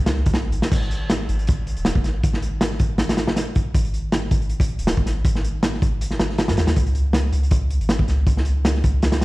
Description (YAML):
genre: drum and bass, jungle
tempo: 159 BPM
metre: 4/4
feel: swing 54% on 16ths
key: unclear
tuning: A4 = 440 Hz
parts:
  - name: soft dub sub bass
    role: bass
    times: 0.0-9.2 s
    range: D#1 to G#2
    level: -22 LUFS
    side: equal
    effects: none
  - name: crunchy breakbeat drum kit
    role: drums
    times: 0.1-9.2 s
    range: crash cymbal, hi-hat, kick drum, snare drum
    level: -20 LUFS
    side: equal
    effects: none
room: little or no reverb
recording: played on a big sound system in a bare room, large studio reverb, vinyl crackle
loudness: -18 LUFS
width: side -20 dB against mid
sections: 0.7-9.2 A section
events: drop 0.7-9.2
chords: none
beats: 0.35 | 0.72 1.10 1.48 1.85 | 2.23 2.61 2.99 3.36 | 3.74 4.12 4.50 4.87 | 5.25 5.63 6.01 6.38 | 6.76 7.14 7.51 7.89 | 8.27 8.65 9.03